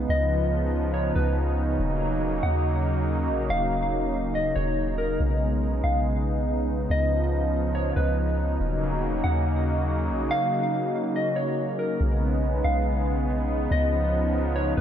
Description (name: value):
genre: hip hop, atmospheric cloud-rap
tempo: 141 BPM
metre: 4/4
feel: half-time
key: Eb minor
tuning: A4 = 441 Hz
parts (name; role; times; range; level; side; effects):
- warm analog pad; sustained chords; 0.0-14.8 s; C#3 to D#4; -26 LUFS; equal; lush chorus
- soft 808-style bass; bass; 0.0-14.8 s; Eb1 to Eb2; -26 LUFS; equal; none
- mellow electric guitar; melody; 0.1-14.8 s; Bb4 to Gb5; -30 LUFS; equal; vibrato effect, ping-pong delay
room: light reverb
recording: none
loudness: -23 LUFS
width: side -9 dB against mid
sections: 0.0-12.0 A section; 12.0-14.8 B section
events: none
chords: 0.1 Db9; 1.8 Ebm7; 5.2 B69; 6.9 Db9; 8.6 Ebm7; 12.0 B69; 13.7 Db9